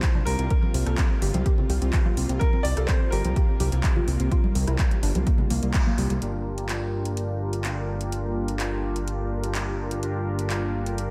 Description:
progressive house; 126 BPM; 4/4; straight; G minor; A4 = 439 Hz
bright grand piano; melody; 0.0-5.7 s; Bb4 to D5; -37 LUFS; equal; sidechain pumping, tape echo
supersaw pad; sustained chords; 0.0-11.1 s; C3 to F4; -36 LUFS; equal; analog chorus, sidechain pumping, low-pass filter
soft round pluck; arpeggios; 0.0-6.2 s; G3 to Bb4; -34 LUFS; equal; chorus, sidechain pumping, tape echo
deep house drum kit; drums; 0.0-11.1 s; handclaps, hi-hat, rim click; -36 LUFS; equal; overdrive, sidechain pumping on hats
electronic kick drum; drums; 0.0-5.8 s; -25 LUFS; equal; overdrive
congas; percussion; 0.1-6.0 s; -36 LUFS; equal; sidechain pumping on perc
fat analog bass; bass; 0.3-11.1 s; G1 to C2; -29 LUFS; equal; sidechain pumping
soft supersaw; stabs; 6.2-11.1 s; D4 to Bb4; -34 LUFS; equal; sidechain pumping, low-pass filter, tape echo
light reverb; -25 LUFS; mono
0.0-6.2 A section; 6.2-11.1 B section
band accent 5.7; filter sweep on supersaw synth 6.2-11.1
0.0 C7sus4; 6.2 Gm7

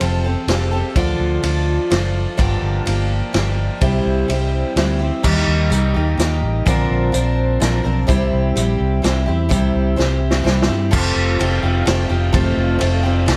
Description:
folk rock and heartland rock; 126 BPM; 3/4; straight; A4 = 441 Hz
picked twelve-string acoustic guitar; accompaniment; 0.0-13.4 s; G2 to Bb4; -22 LUFS; equal
fingered electric bass; bass; 0.0-13.4 s; F1 to G2; -21 LUFS; equal
vintage drum kit; drums; 0.0-13.4 s; crash cymbal, hi-hat, kick drum, ride cymbal, snare drum; -24 LUFS; equal
light reverb, small room reverb; -18 LUFS; mono
0.0-5.2 A section; 5.2-10.9 B section; 10.9-13.4 C section
drum fill 10.0-10.9
0.0 Fadd9; 1.0 Dm; 2.4 Gm7; 3.8 C; 5.2 Eb; 6.7 Bbadd9; 8.1 C; 10.9 Fadd9

